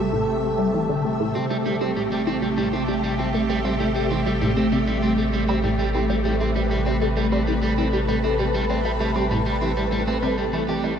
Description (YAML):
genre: ambient, sequencer-driven space music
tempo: 98 BPM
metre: 4/4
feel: straight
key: A minor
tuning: A4 = 440 Hz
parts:
  - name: soft octave-layered synth lead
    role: melody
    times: 0.0-1.0 s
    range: A4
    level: -30 LUFS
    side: left 1 dB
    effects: chorus, ping-pong delay
  - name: phased string machine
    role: sustained chords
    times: 0.0-11.0 s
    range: C3 to E5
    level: -24 LUFS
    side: equal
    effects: ensemble chorus, phaser
  - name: resonant blip pluck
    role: riff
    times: 0.0-10.9 s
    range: A2 to A3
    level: -26 LUFS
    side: equal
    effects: phaser, analog chorus, ping-pong delay
  - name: warm sub bass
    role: bass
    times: 0.0-11.0 s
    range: A1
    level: -28 LUFS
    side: equal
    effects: none
  - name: wind-like tuned noise texture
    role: texture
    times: 0.0-11.0 s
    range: G4 to A5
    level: -33 LUFS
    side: right 2 dB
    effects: built-in reverb
  - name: electric guitar at the edge of break-up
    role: arpeggios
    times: 1.4-10.9 s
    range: G3 to G4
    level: -28 LUFS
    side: right 1 dB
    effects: auto-pan, ping-pong delay
room: wet cathedral reverb, RT60 6.9 s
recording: in a vast, echoing space, cassette tape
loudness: -20 LUFS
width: side -8 dB against mid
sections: 0.0-11.0 A section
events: filter sweep on synth arpeggio sound 0.0-11.0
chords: 0.0 Am7